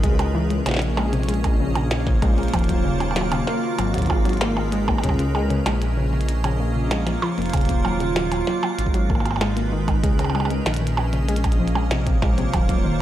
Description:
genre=IDM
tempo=96 BPM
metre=4/4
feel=straight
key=unclear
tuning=A4 = 438 Hz
part: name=icy glass pad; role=sustained chords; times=0.0-13.0 s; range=Bb3 to F4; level=-27 LUFS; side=right 2 dB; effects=chorus, built-in reverb
part: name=warbly dusty pluck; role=arpeggios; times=0.0-13.0 s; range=C3 to Bb3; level=-26 LUFS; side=left 3 dB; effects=chorus, cassette tape, tape echo
part: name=dark detuned saw bass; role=bass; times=0.0-13.0 s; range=Eb1 to Db2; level=-24 LUFS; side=equal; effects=none
part: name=electronic kick drum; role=drums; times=0.0-12.8 s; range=none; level=-21 LUFS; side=equal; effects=studio reverb
part: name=glitchy drum kit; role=drums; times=0.0-12.8 s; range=hi-hat, percussion blips, snare drum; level=-28 LUFS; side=right 3 dB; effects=studio reverb
room=little or no reverb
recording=dry, gritty hardware recording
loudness=-19 LUFS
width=side -12 dB against mid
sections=0.0-13.0 A section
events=kick drops out 6.3-7.5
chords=0.0 Dbm9; 1.0 Bbm9; 2.5 Ebm9; 3.5 Abm9; 5.0 Dbm9; 6.0 Bbm9; 7.5 Ebm9; 8.5 Abm9; 10.0 Dbm9; 11.0 Bbm9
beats=| 0.04 0.66 1.29 1.91 | 2.54 3.16 3.79 4.41 | 5.04 5.66 6.29 6.91 | 7.54 8.16 8.79 9.41 | 10.04 10.66 11.29 11.91 | 12.54

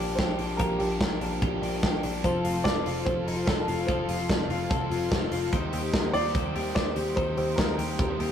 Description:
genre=jangly indie pop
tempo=146 BPM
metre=4/4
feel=straight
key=Bb major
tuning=A4 = 439 Hz
part: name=warm upright piano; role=melody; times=0.0-8.0 s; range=G4 to D5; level=-31 LUFS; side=right 1 dB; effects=none
part: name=overdriven electric guitar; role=accompaniment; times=0.0-8.3 s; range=Bb2 to C5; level=-35 LUFS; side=right 4 dB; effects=spring reverb
part: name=twelve-string electric guitar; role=arpeggios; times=0.0-8.3 s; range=Bb2 to C5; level=-31 LUFS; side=left 5 dB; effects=none
part: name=vintage muted picked electric bass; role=bass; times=0.0-8.3 s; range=F1 to Eb2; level=-33 LUFS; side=equal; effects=none
part: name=modern studio drum kit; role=drums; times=0.2-8.3 s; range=hi-hat, kick drum, snare drum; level=-28 LUFS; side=equal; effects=none
part: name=combo organ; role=accompaniment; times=2.2-8.3 s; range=C4 to A4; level=-40 LUFS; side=right 2 dB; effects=none
room=moderate small room reverb, RT60 0.5 s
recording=rough rehearsal-room recording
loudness=-24 LUFS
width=side -9 dB against mid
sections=0.0-8.3 A section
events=none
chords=0.0 Bb6; 2.2 F; 5.5 Eb6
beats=0.19 | 0.60 1.01 1.42 1.83 | 2.24 2.65 3.06 3.48 | 3.88 4.30 4.71 5.12 | 5.53 5.94 6.35 6.76 | 7.17 7.58 7.99

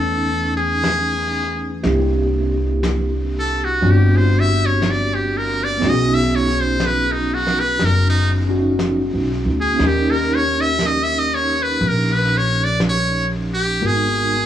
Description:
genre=jazz ballad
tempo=60 BPM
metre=4/4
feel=swing 68% on 8ths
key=unclear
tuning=A4 = 439 Hz
part: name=trumpet with metal mute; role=melody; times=0.0-14.5 s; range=D#4 to E5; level=-20 LUFS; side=equal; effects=none
part: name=bell-like tine electric piano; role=accompaniment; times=0.0-14.5 s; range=G#3 to B4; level=-22 LUFS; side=equal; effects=medium stereo tremolo
part: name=upright bass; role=bass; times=0.0-14.5 s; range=F#1 to E2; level=-20 LUFS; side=equal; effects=none
part: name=vintage brush drum kit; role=drums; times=0.8-14.5 s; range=brushed snare drum, hi-hat, snare drum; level=-28 LUFS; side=equal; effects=none
room=little or no reverb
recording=worn, warbling old tape, cassette tape, warbly pitch drift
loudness=-16 LUFS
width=side -10 dB against mid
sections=0.0-13.8 A section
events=muted trumpet solo 0.0-13.8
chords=0.0 Amaj9; 1.8 C9; 5.8 B6; 9.8 D#7; 13.8 G#m9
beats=0.84 | 1.84 2.83 3.83 4.82 | 5.82 6.80 7.80 8.79 | 9.79 10.78 11.79 12.80 | 13.81

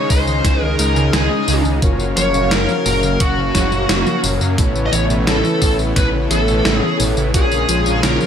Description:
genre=synthwave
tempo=87 BPM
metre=4/4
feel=straight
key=unclear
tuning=A4 = 440 Hz
part: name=high-gain lead guitar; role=melody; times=0.0-8.3 s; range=Gb4 to Eb5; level=-20 LUFS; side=left 1 dB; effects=distortion, ping-pong delay
part: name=soft supersaw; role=sustained chords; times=0.0-8.3 s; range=C#3 to F5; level=-23 LUFS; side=right 1 dB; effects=sidechain pumping
part: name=soft round pluck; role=arpeggios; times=0.0-8.3 s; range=Bb2 to Ab3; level=-25 LUFS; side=right 2 dB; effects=chorus
part: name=mellow synth brass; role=stabs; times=0.0-8.3 s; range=Db4 to F5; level=-23 LUFS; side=left 3 dB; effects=chorus
part: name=wide detuned saw bass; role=bass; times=0.1-8.2 s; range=Gb1 to Gb2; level=-19 LUFS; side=equal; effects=chorus
part: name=electronic kick drum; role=drums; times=0.1-7.5 s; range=none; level=-18 LUFS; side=equal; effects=none
part: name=gated 80s digital drum machine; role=drums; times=0.1-8.3 s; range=hi-hat, snare drum, tambourine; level=-21 LUFS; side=equal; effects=gated reverb, gated reverb snare
room=light reverb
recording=none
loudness=-14 LUFS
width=side -8 dB against mid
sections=0.0-8.3 A section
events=none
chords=0.0 Dbsus2; 1.8 Gbmaj7; 4.6 Aadd9; 7.3 Bbm7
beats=0.45 1.14 | 1.82 2.51 3.20 3.89 | 4.58 5.27 5.96 6.65 | 7.34 8.03

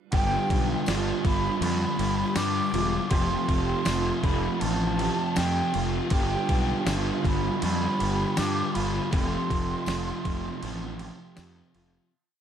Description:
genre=rock, shoegaze and dream pop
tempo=80 BPM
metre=4/4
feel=straight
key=G mixolydian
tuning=A4 = 440 Hz
part: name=mellow hollow concert flute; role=melody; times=0.1-11.4 s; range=G5 to D6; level=-31 LUFS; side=right 2 dB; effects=slapback echo
part: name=fingerpicked twelve-string acoustic guitar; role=arpeggios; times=0.1-12.1 s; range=F4 to G4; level=-36 LUFS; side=right 7 dB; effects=ensemble chorus, slapback echo
part: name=crunchy overdriven guitar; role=riff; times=0.1-12.1 s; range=F3 to B4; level=-32 LUFS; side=right 11 dB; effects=reverse reverb
part: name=fuzz guitar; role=riff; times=0.1-12.1 s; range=F2 to G3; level=-31 LUFS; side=left 12 dB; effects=distortion, lush chorus
part: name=fuzz fingered electric bass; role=bass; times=0.1-12.0 s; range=E1 to G2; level=-30 LUFS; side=left 1 dB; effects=overdrive
part: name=crisp 8-bit digital drum machine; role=drums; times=0.1-11.9 s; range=crash cymbal, kick drum, snare drum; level=-30 LUFS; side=equal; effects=overdrive
part: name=tambourine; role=percussion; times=0.9-11.5 s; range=none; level=-41 LUFS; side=left 10 dB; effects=none
room=small room ambience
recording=dark, warm production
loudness=-24 LUFS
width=side -9 dB against mid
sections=0.1-12.1 A section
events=fade-out 9.1-12.1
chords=0.1 G7; 3.1 Fadd9; 6.1 G7; 9.1 Fadd9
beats=| 0.12 0.87 1.62 2.37 | 3.12 3.87 4.62 5.37 | 6.12 6.87 7.62 8.37 | 9.12 9.87 10.62 11.36

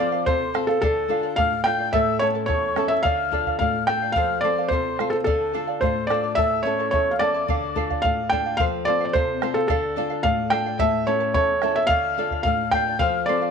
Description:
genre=andean folk, Andean ensemble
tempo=108 BPM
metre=2/4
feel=straight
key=D minor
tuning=A4 = 440 Hz
part: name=felt-muted upright piano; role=melody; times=0.0-13.5 s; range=A4 to G5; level=-22 LUFS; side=right 1 dB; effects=tape echo
part: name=breathy quena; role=second line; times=0.0-8.0, 11.9-13.5 s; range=A5 to G6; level=-28 LUFS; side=left 13 dB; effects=none
part: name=charango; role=accompaniment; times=0.0-13.5 s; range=E4 to A5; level=-28 LUFS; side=right 15 dB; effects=none
part: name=nylon-string guitar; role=accompaniment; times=0.0-13.5 s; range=E2 to A4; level=-28 LUFS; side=left 11 dB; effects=none
part: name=bombo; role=percussion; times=0.3-13.1 s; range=none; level=-28 LUFS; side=left 1 dB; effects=none
room=light reverb, small room reverb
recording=1960s-style stereo with parts hard left and right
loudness=-20 LUFS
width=side -6 dB against mid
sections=0.0-8.6 A section; 8.6-13.5 A section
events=none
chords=0.0 F; 0.8 Dm; 1.9 A; 3.0 Dm; 4.2 F; 5.3 Dm; 6.4 A; 7.5 Dm; 8.6 F; 9.7 Dm; 10.8 A; 11.9 Dm; 13.0 F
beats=0.27 | 0.82 1.38 | 1.94 2.49 | 3.05 3.60 | 4.16 4.71 | 5.27 5.82 | 6.38 6.93 | 7.49 8.04 | 8.59 9.15 | 9.70 10.25 | 10.80 11.35 | 11.90 12.46 | 13.01

